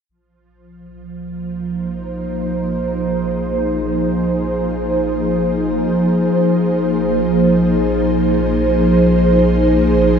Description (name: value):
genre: ambient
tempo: free time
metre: none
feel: none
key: unclear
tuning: A4 = 441 Hz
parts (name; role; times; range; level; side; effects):
- ethereal airy pad; sustained chords; 1.1-10.2 s; F3 to C5; -15 LUFS; equal; ensemble chorus, built-in reverb
- warm sub bass; bass; 0.1-10.2 s; Bb1; -25 LUFS; left 1 dB; tube saturation
room: wet cathedral reverb, RT60 7.5 s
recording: in a vast, echoing space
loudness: -14 LUFS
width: side -7 dB against mid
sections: 0.1-10.2 A section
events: fade-in on sub bass 0.1-10.2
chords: 0.1 Ab/Bb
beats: free time